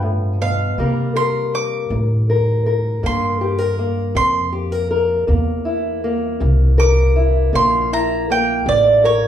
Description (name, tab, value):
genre	acoustic country blues, solo or duo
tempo	53 BPM (dotted quarters)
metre	12/8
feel	straight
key	unclear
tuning	A4 = 440 Hz
part	mandolin	melody	0.0-9.3 s	C#5 to D6	-18 LUFS	right 3 dB	none
part	fingerpicked steel-string acoustic guitar	accompaniment	0.0-9.3 s	A2 to B4	-20 LUFS	left 2 dB	none
part	upright bass	bass	0.0-9.3 s	A1 to C3	-19 LUFS	equal	none
room	moderate large studio reverb, RT60 0.9 s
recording	band playing live in one room, lossy compression artefacts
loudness	-15 LUFS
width	side -10 dB against mid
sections	0.0-9.3 A section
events	none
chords	0.0 G7; 0.8 C7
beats	| 0.79 1.91 3.03 4.16 | 5.28 6.41 7.54 8.66